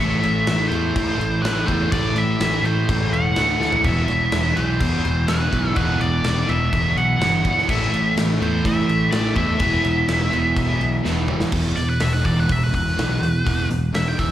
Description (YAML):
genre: hard rock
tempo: 125 BPM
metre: 4/4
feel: straight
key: unclear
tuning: A4 = 438 Hz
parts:
  - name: nasal lead guitar with a parked wah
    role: melody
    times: 0.0-14.3 s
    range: B4 to G5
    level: -23 LUFS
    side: right 1 dB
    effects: overdrive, tape echo
  - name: overdriven electric guitar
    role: riff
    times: 0.0-11.5 s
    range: E2 to A3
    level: -27 LUFS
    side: equal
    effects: slapback echo
  - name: overdriven semi-hollow guitar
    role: riff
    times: 0.0-14.3 s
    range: E2 to A3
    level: -25 LUFS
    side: equal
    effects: slapback echo
  - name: picked electric bass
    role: bass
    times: 0.0-14.3 s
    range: E1 to A2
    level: -23 LUFS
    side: equal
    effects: none
  - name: gated 80s drum kit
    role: drums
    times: 0.2-14.3 s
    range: crash cymbal, hi-hat, kick drum, snare drum, toms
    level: -25 LUFS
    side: equal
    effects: none
room: small room ambience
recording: live gig heard through the venue's PA, club reverb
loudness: -17 LUFS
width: side -12 dB against mid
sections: 0.0-11.5 A section; 11.5-14.3 B section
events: drum fill 3.6, 11.0-11.5; lead electric guitar solo 11.5-14.3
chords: 0.0 Am; 3.8 E5; 7.7 A5; 9.6 E5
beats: 0.46 0.95 1.43 | 1.91 2.39 2.88 3.36 | 3.84 4.32 4.80 5.28 | 5.76 6.24 6.72 7.20 | 7.68 8.16 8.64 9.12 | 9.60 10.08 10.56 11.04 | 11.53 12.01 12.49 12.97 | 13.46 13.94